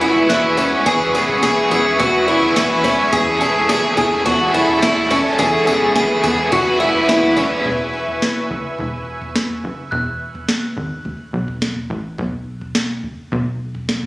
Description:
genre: dream pop.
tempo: 106 BPM.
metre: 4/4.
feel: straight.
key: E major.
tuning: A4 = 440 Hz.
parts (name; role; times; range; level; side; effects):
overdriven electric guitar; accompaniment; 0.0-7.7 s; E2 to B4; -21 LUFS; right 1 dB; tremolo, ensemble chorus, shimmer reverb.
shimmering ambient pad; sustained chords; 0.0-7.6 s; A4 to C#6; -21 LUFS; equal; chorus, built-in reverb, shimmer reverb.
picked twelve-string acoustic guitar; arpeggios; 0.0-7.7 s; C#4 to G#4; -16 LUFS; equal; wide subtle chorus, digital delay, shimmer reverb.
plucky analog bass; bass; 0.0-14.1 s; E1 to E2; -27 LUFS; equal; none.
soft vintage rhythm box; drums; 0.2-14.1 s; kick drum, snare drum, tambourine, toms; -23 LUFS; equal; none.
glockenspiel with soft plastic mallets; texture; 0.3-1.1, 7.7-11.0 s; E6 to G#6; -30 LUFS; right 1 dB; digital delay, shimmer reverb.
room: moderate huge ambient reverb, RT60 6.3 s.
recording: recorded on a phone in the room, studio reverb.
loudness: -15 LUFS.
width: side -19 dB against mid.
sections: 0.0-7.7 A section; 7.7-14.1 B section.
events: none.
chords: 0.0 C#m7/E; 0.9 E6; 3.1 Amaj7/E; 5.4 E6; 7.7 E; 12.2 G#madd11 (rootless).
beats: 0.30 | 0.87 1.43 2.00 2.56 | 3.13 3.70 4.26 4.83 | 5.39 5.96 6.53 7.09 | 7.66 8.22 8.79 9.36 | 9.92 10.49 11.05 11.62 | 12.19 12.75 13.32 13.88.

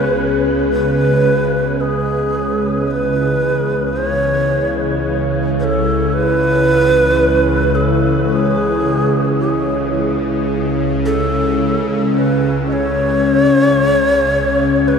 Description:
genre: dark ambient drone.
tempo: free time.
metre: none.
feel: none.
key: C# minor.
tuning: A4 = 440 Hz.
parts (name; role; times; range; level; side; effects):
breathy long shakuhachi; melody; 0.0-15.0 s; G#4 to D#5; -17 LUFS; right 1 dB; shimmer reverb, ping-pong delay.
deep dark ambient pad; sustained chords; 0.0-15.0 s; C#4 to C#5; -20 LUFS; left 3 dB; chorus, built-in reverb, shimmer reverb.
bowed-like drone; drone; 0.0-15.0 s; C#2 to C#3; -17 LUFS; equal; built-in reverb, phaser.
quartz singing bowl; texture; 0.0-15.0 s; F#4 to D#5; -41 LUFS; left 2 dB; none.
room: wet huge ambient reverb, RT60 8.3 s.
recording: dark, warm production.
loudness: -13 LUFS.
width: side -6 dB against mid.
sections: 0.0-1.8 A section; 1.8-15.0 B section.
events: none.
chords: 0.0 G#m/C#; 1.8 C#m; 10.5 G#m/C#.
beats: free time.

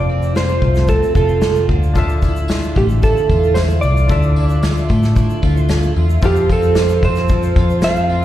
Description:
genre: acoustic pop.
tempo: 112 BPM.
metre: 4/4.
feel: straight.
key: F major.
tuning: A4 = 439 Hz.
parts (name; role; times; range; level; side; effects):
electric slide guitar; melody; 0.0-8.2 s; G4 to F5; -18 LUFS; right 3 dB; plate reverb, slapback echo.
fingerpicked twelve-string acoustic guitar; accompaniment; 0.0-8.2 s; F2 to F4; -22 LUFS; equal; double-tracked left and right.
vintage muted fingered electric bass; bass; 0.0-8.2 s; F1 to A2; -16 LUFS; equal; none.
unplugged drum kit; drums; 0.2-8.1 s; kick drum, shaker, snare drum; -19 LUFS; left 1 dB; none.
clear baby grand piano; accompaniment; 1.9-8.2 s; C4 to F5; -29 LUFS; left 5 dB; plate reverb, slapback echo.
tambourine; percussion; 1.9-8.2 s; none; -42 LUFS; right 3 dB; none.
hand-pumped harmonium; sustained chords; 6.2-8.2 s; F3 to C5; -27 LUFS; equal; stereo widening, plate reverb.
room: light reverb.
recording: live gig heard through the venue's PA, recital hall reverb.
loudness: -12 LUFS.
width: side -13 dB against mid.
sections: 0.0-6.2 A section; 6.2-8.2 B section.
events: none.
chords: 0.0 F; 1.7 Dmadd9; 6.2 F.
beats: 0.35 0.89 1.42 | 1.96 2.49 3.03 3.56 | 4.09 4.63 5.16 5.70 | 6.23 6.76 7.30 7.83.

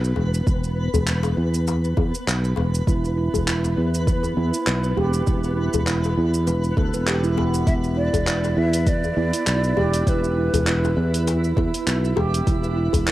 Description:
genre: organic downtempo.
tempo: 100 BPM.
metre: 4/4.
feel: swing 56% on 16ths.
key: unclear.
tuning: A4 = 443 Hz.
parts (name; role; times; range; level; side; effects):
sustaining fretless electric bass; bass; 0.0-13.1 s; E1 to E2; -22 LUFS; equal; sidechain pumping.
deep house drum kit; drums; 0.0-13.1 s; handclaps, hi-hat, shaker; -28 LUFS; equal; overdrive, cassette tape.
twinkling granular texture; texture; 0.0-13.1 s; B3 to B4; -31 LUFS; equal; built-in reverb, cassette tape.
djembe; percussion; 0.2-13.0 s; none; -28 LUFS; left 4 dB; none.
electronic kick drum; drums; 0.5-13.0 s; none; -22 LUFS; equal; overdrive, cassette tape.
handpan; arpeggios; 2.9-13.1 s; B3 to B4; -26 LUFS; right 3 dB; cassette tape, analog delay.
breathy ney; melody; 7.7-13.1 s; A4 to E5; -27 LUFS; equal; cassette tape, analog delay.
room: light reverb, small room ambience.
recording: home recording on cassette.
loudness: -19 LUFS.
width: side -15 dB against mid.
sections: 0.0-13.1 A section.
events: none.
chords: 0.0 E5.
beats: | 0.47 1.07 1.67 2.27 | 2.87 3.47 4.07 4.67 | 5.27 5.87 6.47 7.07 | 7.67 8.27 8.87 9.47 | 10.07 10.67 11.27 11.87 | 12.47 13.07.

